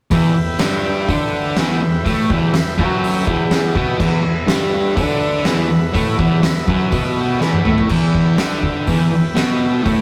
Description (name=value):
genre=garage rock duo or trio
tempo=123 BPM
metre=4/4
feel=straight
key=E minor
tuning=A4 = 440 Hz
part: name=combo organ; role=sustained chords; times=0.1-10.0 s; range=B4 to B5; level=-28 LUFS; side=equal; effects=none
part: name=fuzz guitar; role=riff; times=0.1-10.0 s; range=E2 to D4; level=-18 LUFS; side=equal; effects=distortion
part: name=oversized low-tuned drum kit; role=drums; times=0.1-10.0 s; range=crash cymbal, hi-hat, kick drum, snare drum, toms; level=-22 LUFS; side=equal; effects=none
part: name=tambourine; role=percussion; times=0.6-9.5 s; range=none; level=-39 LUFS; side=equal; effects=none
room=moderate small room reverb, RT60 0.6 s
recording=rough rehearsal-room recording, tube saturation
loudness=-17 LUFS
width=mono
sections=0.1-7.9 A section; 7.9-10.0 B section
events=transistor combo organ fill 6.9-7.9; drum fill 7.4-7.9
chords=0.1 Em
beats=| 0.11 0.60 1.08 1.57 | 2.06 2.54 3.03 3.52 | 4.00 4.49 4.98 5.46 | 5.95 6.44 6.92 7.41 | 7.90 8.39 8.88 9.37 | 9.86